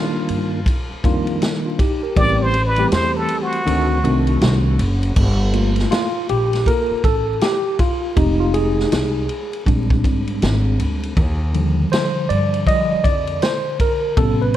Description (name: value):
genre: hip hop, jazz-hop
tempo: 80 BPM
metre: 4/4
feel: swing 63% on 16ths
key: unclear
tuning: A4 = 439 Hz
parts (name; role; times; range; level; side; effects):
- bright tine electric piano; accompaniment; 0.0-14.6 s; C3 to Eb5; -20 LUFS; equal; medium stereo tremolo
- upright bass; bass; 0.3-14.6 s; F1 to G2; -19 LUFS; equal; none
- vintage drum kit; drums; 0.3-14.6 s; crash cymbal, hi-hat, kick drum, ride cymbal, snare drum; -21 LUFS; equal; none
- trumpet with plunger mute; melody; 2.2-4.2 s; F#4 to D5; -22 LUFS; right 1 dB; tape echo
room: studio reverb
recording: dark, warm production, vinyl crackle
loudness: -16 LUFS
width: side -12 dB against mid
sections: 0.0-5.2 A section; 5.2-14.6 A section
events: muted trumpet solo 0.0-5.2; kick muted 3.7-5.2; tine electric piano solo 5.2-14.6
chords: 0.0 Ebmaj9; 2.2 Am7; 3.7 D7b9; 5.2 Gm9; 8.2 Fm9; 9.7 Bb13; 11.2 Ebmaj9